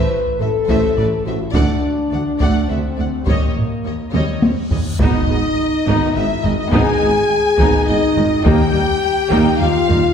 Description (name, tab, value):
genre	cinematic, epic orchestral film score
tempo	104 BPM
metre	3/4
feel	straight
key	unclear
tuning	A4 = 439 Hz
part	warm studio violin section	melody	0.0-10.1 s	C#5 to G#5	-25 LUFS	left 2 dB	none
part	warm symphonic violin section	second line	0.0-10.1 s	B4 to G#5	-28 LUFS	left 3 dB	none
part	warm symphonic viola section	accompaniment	0.0-10.0 s	D#3 to D#4	-23 LUFS	right 2 dB	none
part	dark French horn section	sustained chords	0.0-10.1 s	A#3 to B4	-19 LUFS	left 2 dB	none
part	mellow tuba	bass	0.4-10.0 s	G#1 to D#2	-25 LUFS	right 2 dB	none
part	rich symphonic cello section	bass	0.4-10.0 s	D2 to A2	-24 LUFS	right 1 dB	none
part	warm studio double bass section	bass	0.4-9.9 s	G#1 to D#2	-25 LUFS	right 2 dB	none
part	taiko ensemble	drums	0.7-10.1 s	none	-20 LUFS	equal	none
part	reverse cymbal and impact	sound effects	4.7-6.7 s	none	-28 LUFS	equal	none
room	wet scoring stage reverb, RT60 1.5 s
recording	heard from further back in the room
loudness	-14 LUFS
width	side -7 dB against mid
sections	0.0-5.0 A section; 5.0-10.1 B section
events	drum fill 4.1-5.0; reverse cymbal 4.7; impact 5.0-6.7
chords	0.0 Am; 1.5 D; 3.3 D#7; 5.0 G#m; 8.5 D#